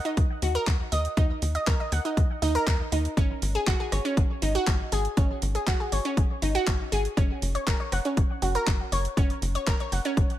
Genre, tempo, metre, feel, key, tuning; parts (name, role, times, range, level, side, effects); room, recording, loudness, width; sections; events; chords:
progressive house; 120 BPM; 4/4; straight; A4 = 440 Hz
analog pluck; arpeggios; 0.0-10.2 s; Db4 to Gb5; -28 LUFS; right 1 dB; chorus, sidechain pumping, dub echo
house drum kit; drums; 0.1-10.4 s; handclaps, hi-hat, rim click; -34 LUFS; right 1 dB
tight sequencer bass; bass; 0.2-10.3 s; Gb1 to Eb2; -28 LUFS; equal; sidechain pumping
electronic kick drum; drums; 0.2-10.3 s; -24 LUFS; equal; overdrive
little or no reverb; -23 LUFS; side -13 dB against mid
0.0-10.4 A section
0.0 Ebm; 3.2 Ab7sus4; 7.2 Gb